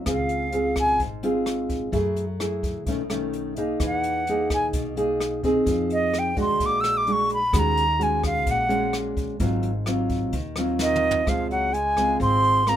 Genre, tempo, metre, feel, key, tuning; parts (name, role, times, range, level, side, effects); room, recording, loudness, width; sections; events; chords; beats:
bossa nova; 129 BPM; 4/4; straight; Db major; A4 = 441 Hz
nylon-string guitar; accompaniment; 0.0-12.8 s; Ab2 to Ab4; -25 LUFS; equal
upright bass; bass; 0.0-12.8 s; Ab1 to Gb2; -30 LUFS; equal
breathy silver concert flute; melody; 0.1-1.0, 3.9-12.8 s; Eb5 to Fb6; -22 LUFS; equal
jazz brush drum kit; drums; 0.1-12.8 s; hi-hat, kick drum, rim click, snare drum, toms; -31 LUFS; equal
bright trombone; second line; 10.8-12.8 s; Eb3 to C4; -31 LUFS; right 5 dB
light reverb; minimal, uncompressed stereo recording; -21 LUFS; side -10 dB against mid
0.0-11.3 A section; 11.3-12.8 B section
flute solo 0.0-11.3; drum fill 10.8-11.3
0.1 Dbmaj7; 1.9 Gbm9; 2.9 Cb9; 3.8 Emaj9#11; 5.7 Fm7; 6.6 Bbaug7; 7.5 Ebm7; 9.4 Ab6; 11.3 Dbmaj7
| 0.07 0.54 1.01 1.47 | 1.94 2.41 2.87 3.34 | 3.81 4.27 4.74 5.21 | 5.67 6.14 6.60 7.07 | 7.54 8.00 8.47 8.94 | 9.40 9.87 10.33 10.80 | 11.27 11.73 12.20 12.67